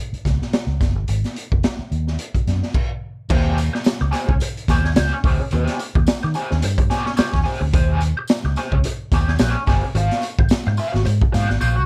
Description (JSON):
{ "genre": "funk", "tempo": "108 BPM", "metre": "4/4", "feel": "swing 56% on 16ths", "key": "Eb mixolydian", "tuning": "A4 = 440 Hz", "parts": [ { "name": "vintage muted fingered electric bass", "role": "bass", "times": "0.1-11.9 s", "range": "Gb1 to Eb3", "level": "-22 LUFS", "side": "equal", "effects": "none" }, { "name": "raw garage drum kit", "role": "drums", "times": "0.1-11.6 s", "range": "crash cymbal, hi-hat, kick drum, snare drum", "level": "-23 LUFS", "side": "equal", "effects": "none" }, { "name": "raw garage guitar", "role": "accompaniment", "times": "3.3-11.8 s", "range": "Db4 to F5", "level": "-27 LUFS", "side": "equal", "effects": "wah, overdrive, harmonic tremolo" }, { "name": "tambourine", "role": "percussion", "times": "3.3-11.8 s", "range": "none", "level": "-42 LUFS", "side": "equal", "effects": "none" } ], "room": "little or no reverb", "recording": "dark, warm production", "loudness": "-20 LUFS", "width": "mono", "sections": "0.0-3.3 A section; 3.3-11.9 B section", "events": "stop 2.7-3.3; drum fill 11.6", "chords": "0.0 Eb7 (rootless); 1.1 Ab5; 3.3 Eb6; 9.9 Ab13" }